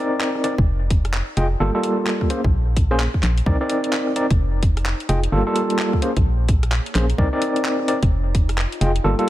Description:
UK garage, two-step garage; 129 BPM; 4/4; swing 62% on 16ths; C minor; A4 = 442 Hz
overdriven tine electric piano; stabs; 0.0-9.3 s; G3 to G5; -22 LUFS; equal; fast tremolo, ping-pong delay
ethereal airy pad; texture; 0.4-9.3 s; Bb3 to Bb5; -37 LUFS; right 2 dB
garage drum kit; drums; 0.2-9.3 s; handclaps, hi-hat, rim click; -27 LUFS; equal
organ-like FM bass; bass; 0.6-9.1 s; F1 to C2; -20 LUFS; equal
electronic kick drum; drums; 0.6-8.5 s; -19 LUFS; equal
little or no reverb; -17 LUFS; side -14 dB against mid
0.0-9.3 A section
0.0 Cm9; 0.7 Fm9; 1.6 Gm9; 2.3 Bbm9; 3.5 Cm9; 4.4 Fm9; 5.3 Gm9; 6.0 Bbm9; 7.2 Cm9; 8.1 Fm9

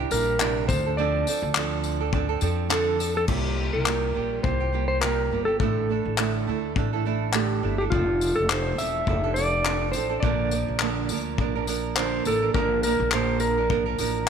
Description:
acoustic pop; 104 BPM; 4/4; swing 55% on 16ths; A4 = 440 Hz
nylon-string guitar; accompaniment; 0.0-14.3 s; A2 to Bb4; -28 LUFS; right 12 dB
upright bass; bass; 0.0-14.3 s; E1 to F2; -28 LUFS; left 2 dB
clean lap steel guitar; melody; 0.1-14.3 s; F4 to E5; -26 LUFS; equal
modern studio drum kit; drums; 0.1-14.1 s; crash cymbal, handclaps, kick drum, tambourine; -28 LUFS; left 5 dB
light reverb, small room reverb; 1960s-style stereo; -22 LUFS; side -7 dB against mid
0.0-3.3 A section; 3.3-12.5 B section; 12.5-14.3 A section
0.0 Cadd9; 0.7 Dm7; 3.3 C7sus4; 5.6 Asus4; 7.9 F6; 10.2 Bb

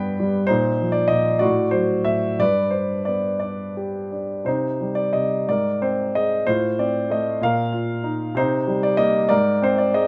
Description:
classical, lyrical solo piano; 58-64 BPM (dotted quarters); 6/8; rubato; C minor; A4 = 441 Hz
warm concert grand piano; solo; 0.0-10.1 s; G2 to G5; -21 LUFS; equal
moderate small room reverb, RT60 0.5 s; -21 LUFS; mono
0.0-10.1 A section
0.5 Bbsus4; 1.4 Am6; 2.4 G; 4.5 Cm; 5.5 Abadd9; 6.5 F/A; 7.4 Bbsus4; 8.4 Cm7; 9.3 Abadd9

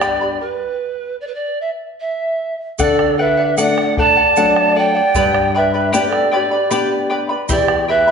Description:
andean folk, Andean ensemble; 76 BPM; 3/4; straight; A4 = 440 Hz
bright reedy pan flute; melody; 0.0-8.1 s; B4 to A5; -17 LUFS; right 3 dB
mellow large quena; second line; 0.0-8.1 s; G4 to D5; -20 LUFS; equal
charango; accompaniment; 0.0-8.1 s; E4 to B5; -20 LUFS; left 2 dB
flamenco guitar; accompaniment; 0.0-8.1 s; E2 to G4; -21 LUFS; left 5 dB
bombo; percussion; 0.0-7.9 s; -24 LUFS; equal
tube shaker; percussion; 0.0-7.7 s; -29 LUFS; right 8 dB
wet recital hall reverb, RT60 1.5 s; nothing above 10.8 kHz; -14 LUFS; side -6 dB against mid
0.0-2.8 A section; 2.8-8.1 B section
stop 0.4-2.8
0.4 N.C.; 2.8 D; 5.1 G; 7.5 Em

